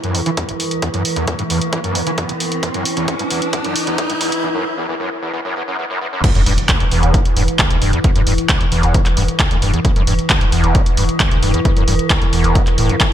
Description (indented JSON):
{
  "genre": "driving peak-time techno",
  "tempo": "133 BPM",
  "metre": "4/4",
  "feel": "straight",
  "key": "E minor",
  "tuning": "A4 = 440 Hz",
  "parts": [
    { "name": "screaming distorted acid line", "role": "riff", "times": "0.0-13.1 s", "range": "E1 to E3", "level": "-20 LUFS", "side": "equal", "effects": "distortion, ensemble chorus, cassette tape, sidechain pumping, digital delay" },
    { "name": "metallic inharmonic drone", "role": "drone", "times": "0.0-13.1 s", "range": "E3", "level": "-23 LUFS", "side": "equal", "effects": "chorus, built-in reverb, sidechain pumping" },
    { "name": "punchy analog drum machine", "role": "drums", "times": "0.0-13.1 s", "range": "crash cymbal, handclaps, hi-hat", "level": "-20 LUFS", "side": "right 1 dB", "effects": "gated reverb" },
    { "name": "riser and impact", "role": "sound effects", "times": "0.7-8.0 s", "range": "none", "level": "-25 LUFS", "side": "equal", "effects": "none" },
    { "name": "electronic kick drum", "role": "drums", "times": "0.4-13.1 s", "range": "none", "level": "-17 LUFS", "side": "equal", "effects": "high-pass filter on kick, high-pass filter on room" },
    { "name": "saturated sub bass", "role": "bass", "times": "6.4-12.9 s", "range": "E1", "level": "-19 LUFS", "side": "equal", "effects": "tube saturation, sidechain pumping, low-pass filter" }
  ],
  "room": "light reverb",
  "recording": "bright 1980s-style digital production, high-pass filter",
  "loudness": "-14 LUFS",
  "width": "side -11 dB against mid",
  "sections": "0.0-6.2 A section; 6.2-13.1 B section",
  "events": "build-up 0.0-6.2; filter sweep on acid bass 0.0-6.2; riser 0.7-4.4; drum fill 2.6-4.4; break 4.4-6.2; drop 6.2-13.1; impact 6.2-8.0",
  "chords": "none"
}